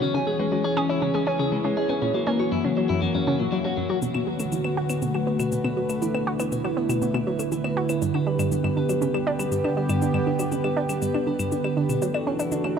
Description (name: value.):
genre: ambient, sequencer-driven space music.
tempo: 120 BPM.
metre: 4/4.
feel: straight.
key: B minor from 4.0 s.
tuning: A4 = 441 Hz.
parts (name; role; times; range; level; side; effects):
sweeping resonant pad; sustained chords; 0.0-12.8 s; D3 to C#5; -24 LUFS; equal; chorus.
clean electric guitar; arpeggios; 0.0-12.8 s; F#3 to B5; -32 LUFS; left 2 dB; auto-pan, analog delay.
analog pluck; riff; 0.0-12.8 s; F#2 to G#4; -27 LUFS; equal; chorus, analog delay.
shaker and claves; percussion; 4.0-12.7 s; none; -36 LUFS; left 4 dB; analog delay.
room: wet huge ambient reverb, RT60 7.9 s.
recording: none.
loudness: -22 LUFS.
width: side -7 dB against mid.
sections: 0.0-4.0 A section; 4.0-12.8 B section.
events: fade-in on clean electric guitar 4.0-12.8.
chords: 0.0 C#m; 2.0 F#7; 4.0 Bm7; 8.0 G; 12.0 Dadd9.